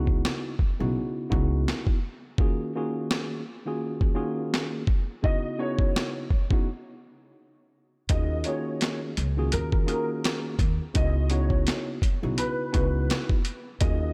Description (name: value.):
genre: hip hop, boom-bap hip-hop.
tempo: 84 BPM.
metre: 4/4.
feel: swing 56% on 16ths.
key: unclear.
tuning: A4 = 438 Hz.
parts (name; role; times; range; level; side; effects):
mellow tine electric piano; accompaniment; 0.0-14.1 s; Db3 to Ab4; -34 LUFS; equal; high-pass filter, low-pass filter.
upright bass; bass; 0.0-1.6, 8.1-14.1 s; Cb2 to Eb2; -29 LUFS; equal; none.
boom bap sampler-style drum kit; drums; 0.1-14.0 s; hi-hat, kick drum, snare drum; -28 LUFS; equal; none.
warm upright piano; melody; 5.2-14.1 s; Bb4 to Eb5; -36 LUFS; equal; ensemble chorus, high-pass filter, low-pass filter, analog delay.
room: light reverb, digital ambience.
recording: none.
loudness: -27 LUFS.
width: mono.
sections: 0.0-14.1 A section.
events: break 0.0-8.1.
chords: 0.0 Dbm11; 2.4 Ebm11; 5.2 Dbm11; 8.1 Ebm11; 11.0 Dbm11.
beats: 0.24 0.95 1.67 | 2.38 3.10 3.81 4.53 | 5.24 5.95 6.67 7.38 | 8.10 8.81 9.53 10.24 | 10.95 11.67 12.38 13.10 | 13.81.